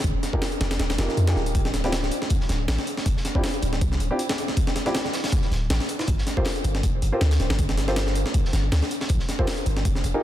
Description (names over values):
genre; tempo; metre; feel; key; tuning
drum and bass, jungle; 159 BPM; 4/4; swing 55% on 16ths; unclear; A4 = 439 Hz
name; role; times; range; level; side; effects
long sustained 808-style bass; bass; 0.0-10.1 s; D1 to F2; -24 LUFS; equal; none
jungle sampler-style drum kit; drums; 0.0-10.1 s; hi-hat, kick drum, snare drum; -24 LUFS; equal; overdrive
dark concert grand piano; stabs; 0.3-10.2 s; C4 to C5; -30 LUFS; equal; vintage 12-bit sampler grit, low-pass filter, dub echo
crunchy breakbeat drum kit; drums; 1.5-10.1 s; hi-hat, snare drum; -37 LUFS; right 1 dB; high-pass filter on hats, high-pass filter on snare, high-pass filter on room
room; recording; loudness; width
light reverb, small room ambience; dense, heavily limited modern master; -21 LUFS; side -12 dB against mid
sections
0.0-10.2 A section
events
none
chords
0.0 Fm11; 1.6 N.C.